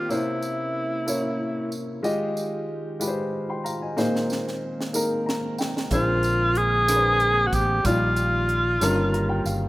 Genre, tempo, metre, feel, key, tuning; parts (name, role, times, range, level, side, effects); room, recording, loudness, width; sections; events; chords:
slow gospel; 62 BPM (dotted quarters); 6/8; straight; A4 = 438 Hz
breathy tenor saxophone; melody; 0.0-1.7, 5.9-9.5 s; E4 to Ab4; -23 LUFS; equal
warm upright piano; accompaniment; 0.0-9.7 s; G2 to C6; -27 LUFS; left 1 dB
mellow tonewheel organ; sustained chords; 0.0-9.7 s; C3 to D5; -33 LUFS; right 1 dB; slow rotary speaker, chorus vibrato
tambourine; percussion; 0.1-9.7 s; -35 LUFS; right 3 dB
crisp fusion drum kit; drums; 4.0-9.6 s; hi-hat, kick drum, rim click, snare drum; -31 LUFS; right 1 dB
fingered electric bass; bass; 5.9-9.7 s; G1 to Bb1; -26 LUFS; equal
moderate plate reverb, RT60 2.0 s; rough home demo mix; -21 LUFS; side -18 dB against mid
0.0-9.7 A section
drum fill 4.0-5.9; upright piano fill 4.9-5.9, 8.8-9.7
0.1 C7b9; 2.0 Fm9; 4.0 Bb9sus4; 5.9 Bb9; 7.8 Ebmaj9/Bb; 8.8 Eb7/G